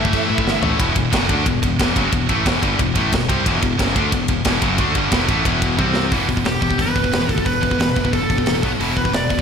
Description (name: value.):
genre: heavy metal.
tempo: 180 BPM.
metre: 4/4.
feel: straight.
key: E minor.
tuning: A4 = 440 Hz.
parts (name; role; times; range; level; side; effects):
high-gain lead guitar; melody; 0.0-0.6, 6.5-9.4 s; G4 to E5; -23 LUFS; right 2 dB; distortion, slapback echo.
heavy high-gain guitar; riff; 0.0-9.4 s; E2 to D4; -23 LUFS; right 11 dB; distortion.
high-gain distorted guitar; riff; 0.0-9.4 s; E2 to D4; -21 LUFS; left 8 dB; distortion, slapback echo.
fuzz fingered electric bass; bass; 0.0-9.4 s; E1 to A2; -25 LUFS; equal; overdrive.
tight metal drum kit; drums; 0.1-9.4 s; crash cymbal, hi-hat, kick drum, ride cymbal, snare drum, toms; -20 LUFS; right 1 dB; none.
room: moderate recital hall reverb, RT60 1.4 s, small room reverb.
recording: big arena sound.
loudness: -16 LUFS.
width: side -7 dB against mid.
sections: 0.8-6.1 A section; 6.1-9.4 B section.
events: drum fill 0.5-0.8, 5.8-6.1.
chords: 0.0 A5; 0.8 Em; 5.8 C5; 6.1 E5; 8.6 B5; 8.8 E5.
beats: 0.13 0.46 | 0.79 1.13 1.46 1.79 | 2.12 2.46 2.79 3.12 | 3.45 3.79 4.12 4.45 | 4.78 5.12 5.45 5.78 | 6.12 6.45 6.79 7.12 | 7.46 7.79 8.13 8.47 | 8.80 9.14.